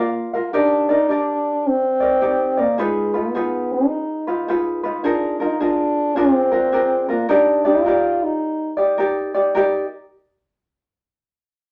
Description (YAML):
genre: Hawaiian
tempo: 106 BPM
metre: 4/4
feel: swing 63% on 8ths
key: Eb major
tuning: A4 = 440 Hz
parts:
  - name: mellow French horn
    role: melody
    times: 0.0-8.8 s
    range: Ab3 to F4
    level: -21 LUFS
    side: equal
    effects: none
  - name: ukulele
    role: accompaniment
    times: 0.0-9.8 s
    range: D4 to F5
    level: -22 LUFS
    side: equal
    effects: none
room: wet studio reverb, RT60 0.6 s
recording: none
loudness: -19 LUFS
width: mono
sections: 0.5-9.6 A section; 9.6-11.7 B section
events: none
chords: 0.0 Bb; 0.5 Ebmaj7; 2.8 Abm6; 5.0 Bb7sus4; 6.2 Bb7; 7.3 Ebmaj7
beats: | 0.54 1.11 1.67 2.23 | 2.79 3.36 3.92 4.48 | 5.05 5.61 6.17 6.74 | 7.30 7.87 8.43 8.99 | 9.56